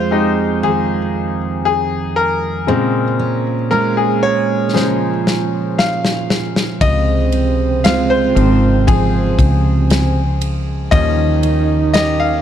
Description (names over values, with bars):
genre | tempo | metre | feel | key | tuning
pop ballad | 58 BPM | 4/4 | straight | unclear | A4 = 437 Hz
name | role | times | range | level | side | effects
bright concert grand piano | accompaniment | 0.0-12.4 s | Db3 to F5 | -18 LUFS | left 4 dB | none
picked steel-string acoustic guitar | arpeggios | 0.0-12.4 s | F2 to G4 | -19 LUFS | right 5 dB | ping-pong delay
modern studio drum kit | drums | 4.8-12.2 s | kick drum, ride cymbal, snare drum | -19 LUFS | left 1 dB | none
mellow French horn section | second line | 6.8-12.4 s | C3 to Eb4 | -19 LUFS | right 5 dB | none
woody fretless electric bass | bass | 6.8-12.4 s | Ab1 to Eb2 | -16 LUFS | left 1 dB | none
room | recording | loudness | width
light reverb | dark, warm production | -13 LUFS | side -9 dB against mid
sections
0.0-12.4 A section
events
grand piano solo 0.0-12.4; drum fill 4.7-6.8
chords
0.0 Fm7; 2.7 Bbm7; 6.8 Dbmaj7; 10.9 Eb7